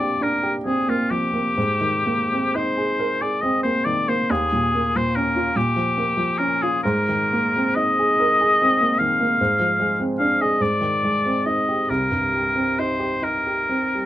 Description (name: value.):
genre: classical, impressionist duo for oboe and grand piano.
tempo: 39-50 BPM (dotted quarters).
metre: 6/8.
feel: rubato.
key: unclear.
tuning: A4 = 440 Hz.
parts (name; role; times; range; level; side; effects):
clear oboe; melody; 0.0-14.1 s; F4 to F5; -20 LUFS; left 1 dB; none.
warm baby grand piano; accompaniment; 0.0-14.1 s; C2 to Bb4; -22 LUFS; right 1 dB; none.
room: light reverb.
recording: none.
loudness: -18 LUFS.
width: side -13 dB against mid.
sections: 0.0-14.1 A section.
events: none.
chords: 0.0 Bb69; 1.6 Abmaj9; 4.3 Eb9sus4; 5.6 Bbm6; 6.8 Abadd9; 9.4 Fm6/Ab; 10.6 Abmaj7; 11.9 Cm7.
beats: 0.21 | 1.56 2.99 | 4.30 5.56 | 6.83 8.17 | 9.39 10.60 | 11.89 13.24.